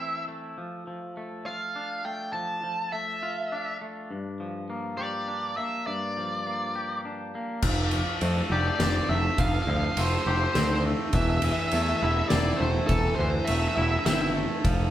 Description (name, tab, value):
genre	post-rock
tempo	102 BPM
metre	3/4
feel	straight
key	unclear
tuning	A4 = 440 Hz
part	smooth overdriven lead guitar	melody	0.0-14.3 s	A4 to A5	-30 LUFS	right 1 dB	none
part	twangy electric guitar	arpeggios	0.0-14.9 s	G2 to G4	-32 LUFS	left 1 dB	none
part	overdriven picked electric bass	bass	7.6-14.9 s	E1 to F2	-27 LUFS	equal	none
part	oversized low-tuned drum kit	drums	7.6-14.8 s	crash cymbal, kick drum, ride cymbal, snare drum	-28 LUFS	equal	none
room	wet large studio reverb, RT60 0.9 s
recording	band playing live in one room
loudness	-24 LUFS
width	side -12 dB against mid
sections	0.0-7.6 A section; 7.6-14.9 B section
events	none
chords	0.0 Am/E; 0.6 Dm/F; 4.1 Gm7; 7.6 Fadd9; 11.1 Am/E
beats	| 0.56 1.16 1.75 | 2.33 2.92 3.51 | 4.10 4.69 5.28 | 5.86 6.45 7.04 | 7.62 8.21 8.79 | 9.38 9.96 10.55 | 11.13 11.72 12.30 | 12.89 13.47 14.06 | 14.64